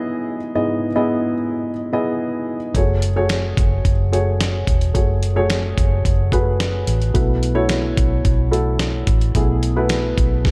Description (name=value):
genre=piano-driven pop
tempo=109 BPM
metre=4/4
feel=straight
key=unclear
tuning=A4 = 438 Hz
part: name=dark upright piano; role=accompaniment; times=0.0-10.5 s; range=G#2 to D#5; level=-23 LUFS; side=equal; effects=none
part: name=vintage muted fingered electric bass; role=bass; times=2.7-10.4 s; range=E1 to B1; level=-22 LUFS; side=equal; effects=none
part: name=dusty soul sampler-style drum kit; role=drums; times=2.7-10.5 s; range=hi-hat, kick drum, snare drum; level=-22 LUFS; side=equal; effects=none
room=light reverb, digital ambience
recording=dark, warm production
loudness=-19 LUFS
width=mono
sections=0.0-10.5 A section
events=none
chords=0.0 Emaj7/G#; 2.7 F#madd9; 7.1 B7sus4